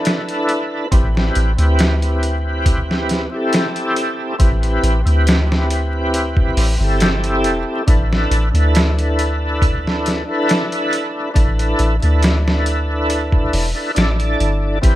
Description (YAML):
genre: trip hop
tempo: 69 BPM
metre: 4/4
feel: swing 53% on 16ths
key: A minor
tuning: A4 = 440 Hz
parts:
  - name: overdriven tonewheel organ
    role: accompaniment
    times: 0.0-15.0 s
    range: C4 to D5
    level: -19 LUFS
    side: equal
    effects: chorus vibrato, slow rotary speaker, tremolo, tape echo
  - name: trip hop sampler-style drum kit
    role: drums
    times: 0.1-15.0 s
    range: hi-hat, kick drum, snare drum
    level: -18 LUFS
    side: equal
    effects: small room ambience
  - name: soft 808-style bass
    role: bass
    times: 0.9-15.0 s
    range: E1 to D2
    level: -17 LUFS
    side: equal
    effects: tube saturation
room: digital ambience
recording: vinyl crackle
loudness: -14 LUFS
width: side -14 dB against mid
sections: 0.9-15.0 A section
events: break 0.0-0.9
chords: 0.0 Asus24; 0.9 Am9; 7.9 G69/A (rootless)